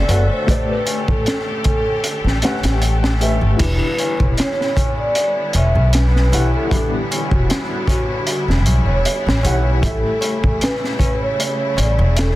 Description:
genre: trip hop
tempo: 77 BPM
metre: 4/4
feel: swing 54% on 16ths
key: E dorian from 3.6 s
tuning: A4 = 439 Hz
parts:
  - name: vibraphone with soft mallets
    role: melody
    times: 0.0-12.4 s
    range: F#4 to E5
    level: -23 LUFS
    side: equal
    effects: tape echo
  - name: felt-muted upright piano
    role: accompaniment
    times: 0.0-12.4 s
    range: E3 to F#5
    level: -26 LUFS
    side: left 2 dB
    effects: tremolo, vintage 12-bit sampler grit
  - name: bright studio string section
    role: sustained chords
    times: 0.0-12.4 s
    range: C#3 to E5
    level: -26 LUFS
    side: equal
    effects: vintage 12-bit sampler grit
  - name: upright bass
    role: bass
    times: 0.0-12.4 s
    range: E1 to B1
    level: -16 LUFS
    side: equal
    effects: none
  - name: crunchy breakbeat drum kit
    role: drums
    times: 0.1-12.4 s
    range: crash cymbal, hi-hat, kick drum, snare drum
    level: -20 LUFS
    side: equal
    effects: none
  - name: tabla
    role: percussion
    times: 0.1-12.3 s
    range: none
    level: -30 LUFS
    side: left 2 dB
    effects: none
room: small room reverb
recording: dense, heavily limited modern master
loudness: -15 LUFS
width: side -16 dB against mid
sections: 0.0-3.6 A section; 3.6-12.4 B section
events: none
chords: 0.5 A9sus4; 3.6 Em7; 9.8 A7

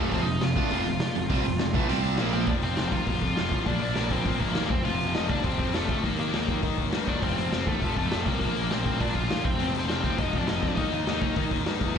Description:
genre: punk rock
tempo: 203 BPM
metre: 4/4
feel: straight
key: F mixolydian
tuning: A4 = 440 Hz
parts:
  - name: nasal lead guitar with a parked wah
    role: melody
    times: 0.0-11.6 s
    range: A3 to F5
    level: -31 LUFS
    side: right 1 dB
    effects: overdrive, slapback echo
  - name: crunchy overdriven guitar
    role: riff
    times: 0.0-2.5 s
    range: F2 to D4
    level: -28 LUFS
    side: right 9 dB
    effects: slapback echo
  - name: tight distorted guitar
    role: riff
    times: 0.0-12.0 s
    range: F2 to Eb4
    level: -31 LUFS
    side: left 12 dB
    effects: distortion, slapback echo
  - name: fuzz picked electric bass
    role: bass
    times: 0.0-11.9 s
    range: F1 to Eb3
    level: -30 LUFS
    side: equal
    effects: overdrive
  - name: raw garage drum kit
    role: drums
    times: 0.1-12.0 s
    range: hi-hat, kick drum, snare drum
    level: -29 LUFS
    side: equal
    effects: none
room: studio reverb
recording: live gig heard through the venue's PA, club reverb, nothing above 10.6 kHz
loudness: -24 LUFS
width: side -7 dB against mid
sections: 0.0-2.5 A section; 2.5-12.0 B section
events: none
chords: 0.0 F; 1.9 C5; 2.2 Bb5; 2.5 F5; 3.7 Bb; 4.7 F; 6.0 Eb5; 7.2 F; 8.4 Bb; 9.4 F5; 10.8 Eb5

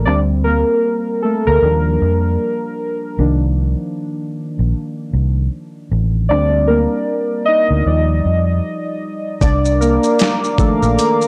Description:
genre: lo-fi hip hop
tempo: 77 BPM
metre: 4/4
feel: swing 60% on 16ths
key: C dorian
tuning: A4 = 440 Hz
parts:
  - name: warbly lo-fi synth keys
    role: accompaniment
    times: 0.0-11.3 s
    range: Eb3 to Eb5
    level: -19 LUFS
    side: equal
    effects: chorus, low-pass filter
  - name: vintage muted fingered electric bass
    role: bass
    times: 0.0-11.0 s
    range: A1 to F2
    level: -18 LUFS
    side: equal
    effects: none
  - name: hollow soft pad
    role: sustained chords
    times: 9.4-11.3 s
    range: Bb4 to D6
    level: -22 LUFS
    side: equal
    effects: chorus, low-pass filter
  - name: dusty soul sampler-style drum kit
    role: drums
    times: 9.4-11.3 s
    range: hi-hat, kick drum, shaker, snare drum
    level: -20 LUFS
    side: equal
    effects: none
  - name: finger snaps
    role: percussion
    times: 10.2-10.4 s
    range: none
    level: -35 LUFS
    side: equal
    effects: none
room: little or no reverb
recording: dry, gritty hardware recording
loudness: -17 LUFS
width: mono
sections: 0.0-11.3 A section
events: synth keys solo 0.0-11.3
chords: 0.1 Bb69/D; 1.6 Ebmaj7; 3.2 Cm11; 6.3 Bb69/D; 7.9 Ebmaj7; 9.4 Cm11

